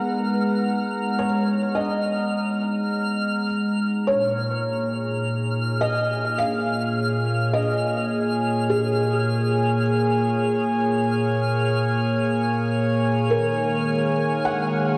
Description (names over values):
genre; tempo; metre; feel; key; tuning
ambient; 52 BPM; 4/4; straight; unclear; A4 = 437 Hz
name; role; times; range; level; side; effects
felt-muted upright piano; melody; 0.0-15.0 s; G#4 to F#5; -30 LUFS; equal; analog chorus, tape echo
warm analog pad; sustained chords; 0.0-15.0 s; A#2 to A#5; -24 LUFS; equal; chorus
twinkling granular texture; texture; 0.0-15.0 s; E#6; -33 LUFS; equal; built-in reverb
organ-like drone; drone; 14.1-15.0 s; G#3 to G#4; -34 LUFS; equal; ensemble chorus, built-in reverb
room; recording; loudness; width
wet lush hall reverb, RT60 2.9 s; dreamy mix soaked in reverb, cassette tape; -23 LUFS; mono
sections
0.0-15.0 A section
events
none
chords
0.0 G#m9; 4.1 A#m7; 13.3 D#m7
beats
0.64 1.79 2.94 | 4.10 5.25 6.41 7.56 | 8.71 9.87 11.02 12.18 | 13.33 14.48